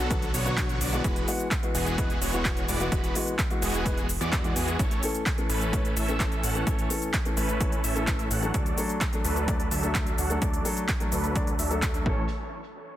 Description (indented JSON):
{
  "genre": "EDM, festival progressive house",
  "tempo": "128 BPM",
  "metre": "4/4",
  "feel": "straight",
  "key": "A major",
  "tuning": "A4 = 440 Hz",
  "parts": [
    { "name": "dark grand piano", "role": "accompaniment", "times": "0.0-12.2 s", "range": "D3 to D5", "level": "-32 LUFS", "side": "left 2 dB", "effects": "sidechain pumping, tape echo" },
    { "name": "big supersaw lead", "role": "riff", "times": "0.0-12.2 s", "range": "D3 to F#5", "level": "-31 LUFS", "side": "right 1 dB", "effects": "sidechain pumping, low-pass filter, tape echo" },
    { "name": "fat analog bass", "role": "bass", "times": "0.0-12.3 s", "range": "E1 to E2", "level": "-32 LUFS", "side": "equal", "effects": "sidechain pumping" },
    { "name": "big-room dance drum kit", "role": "drums", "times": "0.1-12.0 s", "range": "handclaps, hi-hat, shaker", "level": "-32 LUFS", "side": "equal", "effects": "overdrive" },
    { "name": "electronic kick drum", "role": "drums", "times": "0.1-12.2 s", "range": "none", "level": "-29 LUFS", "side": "equal", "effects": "overdrive" }
  ],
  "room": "light reverb",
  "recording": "dense, heavily limited modern master",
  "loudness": "-24 LUFS",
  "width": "side -13 dB against mid",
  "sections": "0.0-12.3 A section",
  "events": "filter sweep on supersaw synth 0.0-12.3; filter sweep on analog synth bass 0.0-12.3",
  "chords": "0.0 Bm; 1.0 Eadd9; 4.8 A; 8.5 D; 12.1 A; 12.3 N.C."
}